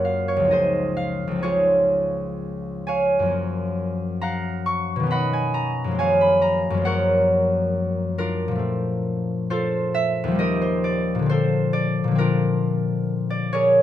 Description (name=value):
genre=classical, solo harp piece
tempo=67 BPM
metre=3/4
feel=rubato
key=unclear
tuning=A4 = 442 Hz
part: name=concert harp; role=solo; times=0.0-13.8 s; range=Db2 to Db6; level=-19 LUFS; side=equal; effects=none
room=light reverb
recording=close, detailed microphones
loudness=-20 LUFS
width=side -11 dB against mid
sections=0.0-13.8 A section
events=none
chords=0.0 Gbmaj9; 0.5 Dbmaj9; 3.3 Gbmaj9; 8.6 A#maj9; 10.4 D#maj9; 11.3 A#maj9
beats=| 0.51 1.43 2.37 | 3.33 4.21 5.09 | 5.97 6.84 7.73 | 8.61 9.50 10.39 | 11.29 12.18 13.08